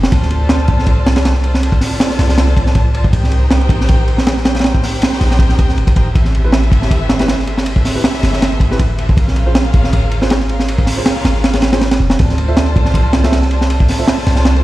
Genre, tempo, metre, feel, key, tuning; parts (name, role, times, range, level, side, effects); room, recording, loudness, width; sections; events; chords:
drum and bass, jungle; 159 BPM; 4/4; swing 54% on 16ths; A4 = 439 Hz
warm 808-style bass; bass; 0.0-14.6 s; F1 to D2; -14 LUFS; equal
crunchy breakbeat drum kit; drums; 0.0-14.6 s; hi-hat, kick drum, ride cymbal, snare drum; -13 LUFS; equal
dark studio string section; sustained chords; 0.1-14.6 s; C4 to A5; -22 LUFS; left 1 dB; vintage 12-bit sampler grit
dark concert grand piano; stabs; 6.4-14.1 s; C4 to E5; -25 LUFS; right 3 dB; low-pass filter, dub echo
little or no reverb; played on a big sound system in a bare room, large studio reverb, vinyl crackle; -11 LUFS; side -16 dB against mid
0.0-14.6 A section
0.1 Dm7; 3.1 Cm7; 6.2 Am7; 9.2 Bbm7; 12.2 Dm7